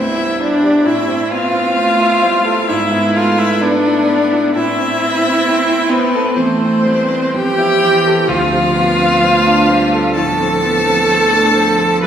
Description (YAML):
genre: classical, slow romantic movement for piano quartet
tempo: 65 BPM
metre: 4/4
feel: rubato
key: unclear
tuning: A4 = 442 Hz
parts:
  - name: rich violin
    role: melody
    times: 0.0-12.1 s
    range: B4 to A5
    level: -18 LUFS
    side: left 4 dB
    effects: none
  - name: clear cello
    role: second line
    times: 0.0-12.1 s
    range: E3 to C4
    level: -20 LUFS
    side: right 3 dB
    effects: none
  - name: bright concert grand piano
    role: accompaniment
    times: 0.0-12.1 s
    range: D2 to C5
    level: -18 LUFS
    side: equal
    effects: none
  - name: rich viola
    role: accompaniment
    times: 0.0-12.1 s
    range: B3 to B4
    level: -15 LUFS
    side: right 1 dB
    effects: none
room: wet recital hall reverb, RT60 1.7 s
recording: recorded in a church or concert hall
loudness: -11 LUFS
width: side -9 dB against mid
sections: 0.0-12.1 A section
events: none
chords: 0.0 C; 0.9 Am; 2.7 E7/G#; 4.5 Am; 8.3 Dm7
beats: | 0.85 1.76 2.69 3.62 | 4.55 5.45 6.36 7.34 | 8.28 9.21 10.15 11.08 | 12.02